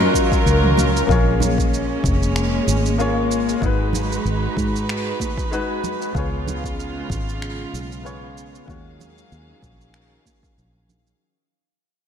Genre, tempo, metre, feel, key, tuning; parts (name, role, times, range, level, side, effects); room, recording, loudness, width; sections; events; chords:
sunset chillout; 95 BPM; 4/4; swing 56% on 16ths; A4 = 443 Hz
vibraphone with soft mallets; melody; 0.0-0.7 s; A#4; -26 LUFS; left 4 dB; ping-pong delay
clear concert grand piano; accompaniment; 0.0-11.2 s; F#3 to C#5; -25 LUFS; moving between left 5 dB and right 3 dB; auto-pan, ping-pong delay
dark chamber string section; sustained chords; 0.0-11.2 s; C#3 to E#5; -24 LUFS; equal
fingered electric bass; bass; 0.0-11.1 s; E#1 to G#2; -22 LUFS; equal
congas; percussion; 0.0-11.0 s; -29 LUFS; right 4 dB
electronic kick drum; drums; 0.1-10.5 s; -24 LUFS; equal; overdrive
deep house drum kit; drums; 0.2-11.2 s; finger snaps, shaker, toms; -30 LUFS; right 3 dB; overdrive
moderate lush hall reverb, RT60 1.7 s, small room ambience; dreamy mix soaked in reverb; -18 LUFS; side -8 dB against mid
0.0-1.1 A section; 1.1-11.2 B section
fade-out 1.1-11.2
0.0 F#maj7; 1.1 A#m7; 3.6 G#m7; 6.1 C#7; 8.7 D#m11